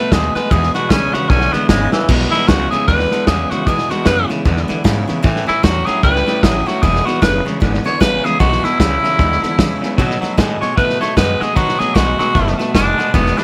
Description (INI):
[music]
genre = rockabilly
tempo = 152 BPM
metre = 4/4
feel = swing 59% on 8ths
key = E major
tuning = A4 = 440 Hz
[part]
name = raspy tenor saxophone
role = melody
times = 0.0-13.4 s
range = E3 to C#5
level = -20 LUFS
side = equal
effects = digital delay
[part]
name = picked steel-string acoustic guitar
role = accompaniment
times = 0.0-13.4 s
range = E2 to F#4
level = -26 LUFS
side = equal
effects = none
[part]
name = twangy electric guitar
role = riff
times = 0.0-13.4 s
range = E2 to A3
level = -24 LUFS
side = equal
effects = none
[part]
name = upright bass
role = bass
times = 0.1-13.4 s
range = E1 to B2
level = -22 LUFS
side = equal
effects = none
[part]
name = vintage drum kit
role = drums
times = 0.1-13.4 s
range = crash cymbal, hi-hat, kick drum, snare drum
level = -20 LUFS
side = equal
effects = none
[sound]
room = small room ambience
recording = none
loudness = -15 LUFS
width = mono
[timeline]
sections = 0.0-2.1 A section; 2.1-13.4 A section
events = tenor saxophone solo 0.0-13.4; drum fill 1.9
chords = 0.0 B7; 0.5 E; 5.2 A; 6.8 E; 10.0 B7